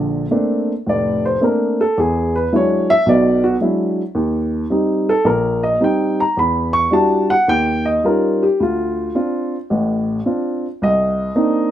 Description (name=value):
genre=solo jazz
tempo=109 BPM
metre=4/4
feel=swing 69% on 8ths, rubato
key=unclear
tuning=A4 = 440 Hz
part: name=dark upright piano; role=solo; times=0.0-11.7 s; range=F1 to Db6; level=-15 LUFS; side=equal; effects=none
room=light reverb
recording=minimal, uncompressed stereo recording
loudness=-15 LUFS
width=side -11 dB against mid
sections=0.0-11.7 A section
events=upright piano solo 0.0-11.7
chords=0.0 Bbmaj9; 2.0 E9; 4.2 Eb6; 6.4 Em9; 7.5 Eb9; 8.6 Dm7; 10.8 Cm9